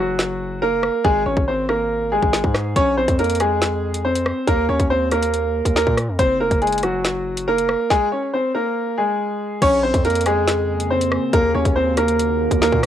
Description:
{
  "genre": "hip hop, drill",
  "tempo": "140 BPM",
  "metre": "4/4",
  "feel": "half-time",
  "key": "Bb minor",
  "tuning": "A4 = 439 Hz",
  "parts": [
    { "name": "clear concert grand piano", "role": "melody", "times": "0.0-12.8 s", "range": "Gb3 to Db5", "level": "-18 LUFS", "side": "equal", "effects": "cassette tape" },
    { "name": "distorted 808-style bass", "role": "bass", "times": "0.0-12.9 s", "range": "F1 to Bb2", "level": "-25 LUFS", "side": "equal", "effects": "distortion" },
    { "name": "drill drum kit", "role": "drums", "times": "0.2-12.9 s", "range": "crash cymbal, hi-hat, kick drum, rim click, snare drum", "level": "-21 LUFS", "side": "equal", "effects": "none" },
    { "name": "deep dark ambient pad", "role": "sustained chords", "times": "10.7-12.9 s", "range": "Db3 to Ab4", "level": "-26 LUFS", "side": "left 1 dB", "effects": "chorus, built-in reverb, cassette tape" }
  ],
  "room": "light reverb",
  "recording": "home recording on cassette",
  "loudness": "-17 LUFS",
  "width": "side -10 dB against mid",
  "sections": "0.0-9.6 A section; 9.6-12.9 B section",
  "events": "break 0.0-2.8",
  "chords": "0.0 Gb; 1.0 N.C.; 2.8 Bb7(no3); 4.5 Eb5; 6.2 Gb; 7.9 N.C.; 9.6 Bbm7; 11.3 Ebm"
}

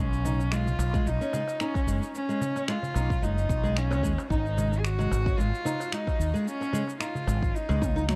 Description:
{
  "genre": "organic downtempo",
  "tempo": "111 BPM",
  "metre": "4/4",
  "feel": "swing 54% on 16ths",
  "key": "G# dorian",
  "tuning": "A4 = 440 Hz",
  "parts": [
    { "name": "dark cello", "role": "melody", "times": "0.0-8.2 s", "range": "C#4 to G#4", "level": "-34 LUFS", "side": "equal", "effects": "digital delay" },
    { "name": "flamenco guitar", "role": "arpeggios", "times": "0.0-8.2 s", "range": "F#3 to D#4", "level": "-35 LUFS", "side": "equal", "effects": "tape echo" },
    { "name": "mellow fretless electric bass", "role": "bass", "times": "0.0-8.2 s", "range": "F#1 to D#2", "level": "-30 LUFS", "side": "equal", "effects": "tube saturation, sidechain pumping" },
    { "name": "bronze singing bowl", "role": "texture", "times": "0.0-8.2 s", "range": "none", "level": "barely audible", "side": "none", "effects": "none" },
    { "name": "deep house drum kit", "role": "drums", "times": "0.1-8.2 s", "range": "finger snaps, shaker, toms", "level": "-39 LUFS", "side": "equal", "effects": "none" },
    { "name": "darbuka", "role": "percussion", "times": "0.2-7.8 s", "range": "none", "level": "-39 LUFS", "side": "equal", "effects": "none" },
    { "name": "electronic kick drum", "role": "drums", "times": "0.9-7.9 s", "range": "none", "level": "-32 LUFS", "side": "equal", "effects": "none" }
  ],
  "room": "light reverb, small room ambience",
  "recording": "dark, warm production",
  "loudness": "-28 LUFS",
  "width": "mono",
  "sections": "0.0-8.2 A section",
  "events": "drum fill 7.8-8.2",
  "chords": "0.0 Badd9; 4.3 G#sus4"
}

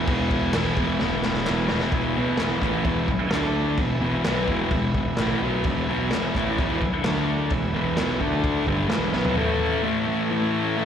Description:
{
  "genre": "garage rock duo or trio",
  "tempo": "129 BPM",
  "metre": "4/4",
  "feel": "straight",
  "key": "E major",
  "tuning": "A4 = 440 Hz",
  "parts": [
    { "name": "overdriven combo organ", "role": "sustained chords", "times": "0.0-10.8 s", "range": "G#4 to A5", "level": "-33 LUFS", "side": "left 2 dB", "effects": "none" },
    { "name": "thick fuzz guitar", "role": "riff", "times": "0.0-10.8 s", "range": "E2 to D4", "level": "-23 LUFS", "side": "equal", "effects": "distortion" },
    { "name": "growling picked electric bass", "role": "bass", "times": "0.0-9.4 s", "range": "E1 to D2", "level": "-31 LUFS", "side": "equal", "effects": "overdrive, tube saturation" },
    { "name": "raw garage drum kit", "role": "drums", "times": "0.1-9.4 s", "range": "crash cymbal, kick drum, snare drum, toms", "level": "-27 LUFS", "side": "equal", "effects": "none" },
    { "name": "group handclap", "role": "percussion", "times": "0.5-9.0 s", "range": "none", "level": "-37 LUFS", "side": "left 1 dB", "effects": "none" }
  ],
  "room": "light reverb, small room ambience",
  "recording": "live gig heard through the venue's PA, recital hall reverb, vinyl crackle",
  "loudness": "-21 LUFS",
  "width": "side -8 dB against mid",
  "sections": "0.0-1.9 A section; 1.9-9.4 B section; 9.4-10.8 A section",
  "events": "drum fill 1.0-1.9, 9.1",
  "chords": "0.0 E; 3.3 D5; 3.8 E; 7.1 D5; 7.5 E; 8.2 D5; 8.7 E; 9.4 A"
}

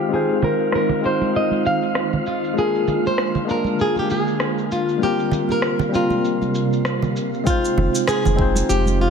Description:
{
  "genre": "sunset chillout",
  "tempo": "98 BPM",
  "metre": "4/4",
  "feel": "swing 57% on 16ths",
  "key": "F dorian",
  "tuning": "A4 = 441 Hz",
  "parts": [
    { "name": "flamenco guitar", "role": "melody", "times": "0.0-9.1 s", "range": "F4 to F5", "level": "-22 LUFS", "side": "left 1 dB", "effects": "tape echo" },
    { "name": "tine electric piano", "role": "accompaniment", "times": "0.0-9.1 s", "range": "G3 to C5", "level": "-23 LUFS", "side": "moving between left 5 dB and right 5 dB", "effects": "medium stereo tremolo, auto-pan, tape echo" },
    { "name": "shimmering ambient pad", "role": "sustained chords", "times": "0.0-9.1 s", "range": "C3 to Eb5", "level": "-26 LUFS", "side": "equal", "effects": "chorus, built-in reverb" },
    { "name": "wind-like tuned noise texture", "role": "texture", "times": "0.0-7.5 s", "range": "F5 to F6", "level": "-35 LUFS", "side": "right 1 dB", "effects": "built-in reverb" },
    { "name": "electronic shaker and rim click", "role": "drums", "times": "0.1-9.0 s", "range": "none", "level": "-27 LUFS", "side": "equal", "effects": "low-pass filter on perc, low-pass filter on snare, low-pass filter on room" },
    { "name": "congas", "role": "percussion", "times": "0.4-9.0 s", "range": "none", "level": "-26 LUFS", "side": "right 5 dB", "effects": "none" },
    { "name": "electronic kick drum", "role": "drums", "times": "7.5-8.5 s", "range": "none", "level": "-21 LUFS", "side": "equal", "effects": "none" },
    { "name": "warm sub bass", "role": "bass", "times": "7.8-9.1 s", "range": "F1", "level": "-19 LUFS", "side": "equal", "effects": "none" }
  ],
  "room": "moderate lush hall reverb, RT60 2.1 s",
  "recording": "low-pass filter",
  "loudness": "-17 LUFS",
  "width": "side -6 dB against mid",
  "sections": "0.0-7.5 A section; 7.5-9.1 B section",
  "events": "none",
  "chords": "0.0 Fm7; 2.6 Bb7; 5.0 C7sus4; 7.5 Fm7"
}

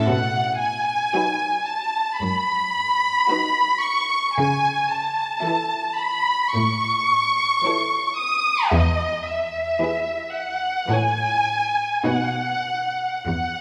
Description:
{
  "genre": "classical, slow romantic movement for string orchestra",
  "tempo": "55 BPM",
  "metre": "4/4",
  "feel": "rubato",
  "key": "unclear",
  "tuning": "A4 = 442 Hz",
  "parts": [
    { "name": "clear chamber violin section", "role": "second line", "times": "0.0-13.0 s", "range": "F#4 to E5", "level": "-34 LUFS", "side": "equal", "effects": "none" },
    { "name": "rich chamber viola section", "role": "accompaniment", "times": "0.0-13.0 s", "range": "E3 to E4", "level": "-33 LUFS", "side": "equal", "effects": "none" },
    { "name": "bright chamber cello section", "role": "bass", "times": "0.0-13.6 s", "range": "E2 to C#3", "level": "-27 LUFS", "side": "equal", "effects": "none" },
    { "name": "dark symphonic violin section", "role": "melody", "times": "0.1-13.6 s", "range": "D#5 to D#6", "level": "-23 LUFS", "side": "equal", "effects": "none" }
  ],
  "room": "wet concert hall reverb, RT60 2.1 s",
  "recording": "none",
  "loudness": "-22 LUFS",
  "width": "mono",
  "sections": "0.0-13.6 A section",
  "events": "none",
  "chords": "0.1 B; 4.4 A/C#; 6.5 A; 8.7 E; 10.9 A; 12.1 B"
}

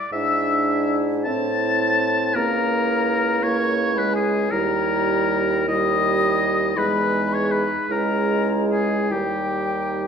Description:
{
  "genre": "classical, slow romantic movement for wind quintet",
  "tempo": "48-56 BPM (dotted quarters)",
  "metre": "6/8",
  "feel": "rubato",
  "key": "unclear",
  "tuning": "A4 = 440 Hz",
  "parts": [
    { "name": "mellow hollow silver concert flute", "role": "melody", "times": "0.0-10.1 s", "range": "G5 to A6", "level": "-27 LUFS", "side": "left 7 dB", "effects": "none" },
    { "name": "clear oboe", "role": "second line", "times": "0.0-10.1 s", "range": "G4 to A5", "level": "-24 LUFS", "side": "left 2 dB", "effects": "none" },
    { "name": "warm French horn", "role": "accompaniment", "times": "0.1-10.1 s", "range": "G3 to D4", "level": "-25 LUFS", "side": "right 1 dB", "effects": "none" },
    { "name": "warm clarinet", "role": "accompaniment", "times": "0.1-10.1 s", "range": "D#4 to E4", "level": "-27 LUFS", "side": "right 6 dB", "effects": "none" },
    { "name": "mellow bassoon", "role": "bass", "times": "0.1-10.1 s", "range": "C#2 to A2", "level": "-26 LUFS", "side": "right 1 dB", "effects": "none" }
  ],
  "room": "wet recital hall reverb, RT60 1.4 s",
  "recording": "none",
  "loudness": "-18 LUFS",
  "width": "side -6 dB against mid",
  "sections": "0.0-10.1 A section",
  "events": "none",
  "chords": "0.1 E7/G#; 1.3 Am; 2.4 A#dim/C#; 4.5 D#; 6.8 Emaj7; 7.9 A#m7b5/C#; 9.1 D#"
}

